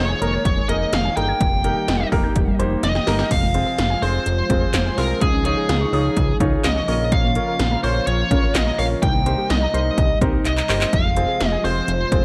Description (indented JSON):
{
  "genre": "synth-pop",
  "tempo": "126 BPM",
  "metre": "4/4",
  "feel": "straight",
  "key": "F minor",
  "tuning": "A4 = 442 Hz",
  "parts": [
    { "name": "smooth overdriven lead guitar", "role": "melody", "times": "0.0-12.2 s", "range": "Ab4 to G5", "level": "-25 LUFS", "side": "equal", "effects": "analog delay" },
    { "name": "brassy analog pad", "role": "sustained chords", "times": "0.0-12.2 s", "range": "C3 to Ab4", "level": "-31 LUFS", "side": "equal", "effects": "chorus" },
    { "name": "warbly dusty pluck", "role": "arpeggios", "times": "0.0-12.2 s", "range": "Eb3 to Ab6", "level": "-32 LUFS", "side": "equal", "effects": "chorus, analog delay" },
    { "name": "fat analog bass", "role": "bass", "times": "0.0-12.2 s", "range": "F1 to Db2", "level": "-25 LUFS", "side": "equal", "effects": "none" },
    { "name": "warm baby grand piano", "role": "accompaniment", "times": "0.2-12.2 s", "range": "Bb3 to Db5", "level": "-29 LUFS", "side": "equal", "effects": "none" },
    { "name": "80s electronic pad drums", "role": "drums", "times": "0.2-12.2 s", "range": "crash cymbal, handclaps, hi-hat, kick drum, snare drum", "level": "-24 LUFS", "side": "equal", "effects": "none" }
  ],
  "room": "light reverb",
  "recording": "none",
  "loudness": "-19 LUFS",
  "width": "mono",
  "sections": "0.0-3.3 A section; 3.3-12.2 B section",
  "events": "drum fill 2.8-3.3, 10.5-10.9",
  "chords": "0.0 Absus2/F; 1.4 Eb/F; 3.3 Fm; 5.2 Dbadd9; 6.9 Bbm; 9.0 Cm7; 10.9 Fm"
}